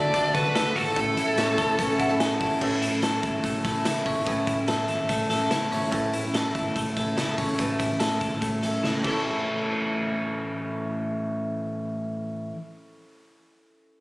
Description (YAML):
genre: jangly indie pop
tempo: 145 BPM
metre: 4/4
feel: straight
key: A major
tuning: A4 = 440 Hz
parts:
  - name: dark smooth lead guitar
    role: melody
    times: 0.0-2.2 s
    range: A4 to D5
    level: -26 LUFS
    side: equal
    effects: overdrive, ping-pong delay
  - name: picked steel-string acoustic guitar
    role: accompaniment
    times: 0.0-12.6 s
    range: A2 to A4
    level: -30 LUFS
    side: right 1 dB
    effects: none
  - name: warm upright piano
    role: accompaniment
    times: 0.0-14.0 s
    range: A3 to A5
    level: -36 LUFS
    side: equal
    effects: none
  - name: twelve-string electric guitar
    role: arpeggios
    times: 0.0-12.6 s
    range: A2 to A4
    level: -28 LUFS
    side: left 1 dB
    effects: ping-pong delay
  - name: vintage muted picked electric bass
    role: bass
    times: 0.0-12.2 s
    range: G#1 to D3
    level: -36 LUFS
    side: equal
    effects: none
  - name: raw garage drum kit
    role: drums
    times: 0.1-9.1 s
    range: crash cymbal, hi-hat, kick drum, snare drum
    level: -30 LUFS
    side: equal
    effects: none
room: little or no reverb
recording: recorded on a phone in the room, studio reverb, compression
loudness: -23 LUFS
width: side -22 dB against mid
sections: 0.0-2.6 A section; 2.6-9.2 B section; 9.2-12.6 C section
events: upright piano fill 1.8-2.6; drum fill 8.8-9.2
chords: 0.0 D; 1.0 A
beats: 0.14 0.55 | 0.96 1.38 1.79 2.20 | 2.61 3.02 3.44 3.85 | 4.27 4.68 5.09 5.51 | 5.92 6.34 6.75 7.17 | 7.59 8.00 8.42 8.83 | 9.25 9.66 10.08 10.50 | 10.91 11.33 11.74 12.16